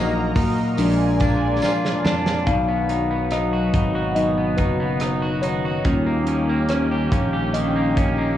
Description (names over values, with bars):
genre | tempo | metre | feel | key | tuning
pop ballad | 71 BPM | 4/4 | straight | unclear | A4 = 439 Hz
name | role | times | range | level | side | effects
mellow tine electric piano | accompaniment | 0.0-8.4 s | F3 to F5 | -24 LUFS | left 3 dB | none
lush unison pad | sustained chords | 0.0-8.4 s | D#3 to Bb5 | -25 LUFS | equal | chorus
electric guitar at the edge of break-up | arpeggios | 0.0-8.4 s | Bb2 to G4 | -26 LUFS | right 3 dB | none
fingered electric bass | bass | 0.0-8.4 s | F#1 to Bb2 | -24 LUFS | equal | none
modern studio drum kit | drums | 0.4-8.2 s | hi-hat, kick drum, rim click, snare drum | -25 LUFS | right 1 dB | none
tambourine | percussion | 0.4-2.5 s | none | -44 LUFS | right 4 dB | none
room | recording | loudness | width
light reverb, studio reverb | worn, warbling old tape, cassette tape, warbly pitch drift | -18 LUFS | side -11 dB against mid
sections
0.0-2.5 A section; 2.5-8.4 B section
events
tine electric piano solo 0.0-2.5, 2.5-8.4; drum fill 1.6-2.5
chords
0.0 Ebm/Bb; 0.8 Bb7; 2.5 B; 5.9 Eb7